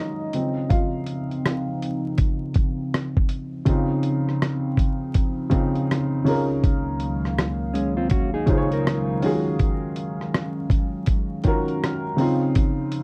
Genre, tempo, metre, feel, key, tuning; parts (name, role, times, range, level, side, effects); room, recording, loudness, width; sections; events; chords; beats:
lo-fi hip hop; 81 BPM; 4/4; swing 62% on 16ths; Db major; A4 = 440 Hz
dark upright piano; accompaniment; 0.0-13.0 s; Db3 to F5; -27 LUFS; equal
dark analog pad; sustained chords; 0.0-13.0 s; Db2 to F5; -31 LUFS; equal; chorus
dusty soul sampler-style drum kit; drums; 0.3-13.0 s; hi-hat, kick drum, rim click; -24 LUFS; equal; overdrive, vintage 12-bit sampler grit
mellow electric guitar; second line; 7.7-9.2 s; Ab3 to Bb4; -30 LUFS; equal; spring reverb, tape echo
light reverb; vinyl crackle; -23 LUFS; mono
0.0-3.7 A section; 3.7-13.0 A section
upright piano solo 0.0-3.7
0.3 Dbmaj9; 6.3 Gbmaj13/Db; 9.2 Ebm11; 12.2 Dbmaj9
| 0.71 1.45 2.19 2.93 | 3.67 4.41 5.15 5.89 | 6.63 7.37 8.12 8.86 | 9.60 10.34 11.08 11.82 | 12.56